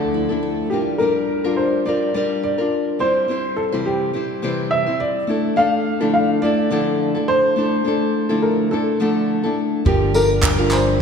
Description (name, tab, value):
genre	acoustic pop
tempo	105 BPM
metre	4/4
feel	swing 55% on 16ths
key	D minor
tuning	A4 = 440 Hz
part	dark upright piano	melody	0.0-11.0 s	G4 to F5	-20 LUFS	right 1 dB	none
part	nylon-string guitar	accompaniment	0.0-11.0 s	C3 to C5	-20 LUFS	left 2 dB	none
part	picked steel-string acoustic guitar	arpeggios	0.0-1.3, 9.9-11.0 s	F3 to A4	-29 LUFS	right 7 dB	none
part	fingered electric bass	bass	9.9-11.0 s	G1	-24 LUFS	left 1 dB	none
part	compact cocktail drum kit	drums	9.9-10.9 s	handclaps, kick drum, tambourine	-21 LUFS	right 1 dB	none
part	group handclap	percussion	10.4-10.6 s	none	-26 LUFS	right 6 dB	none
room	wet church reverb, RT60 3.3 s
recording	recorded in a church or concert hall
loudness	-17 LUFS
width	side -6 dB against mid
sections	0.7-11.0 A section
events	break 0.0-0.7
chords	0.0 Dmadd9; 0.7 Gm7; 3.0 C; 5.3 Dmadd9; 9.9 Gm7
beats	0.14 | 0.71 1.28 1.85 2.43 | 3.00 3.57 4.14 4.71 | 5.29 5.86 6.43 7.00 | 7.57 8.14 8.72 9.29 | 9.86 10.43 11.00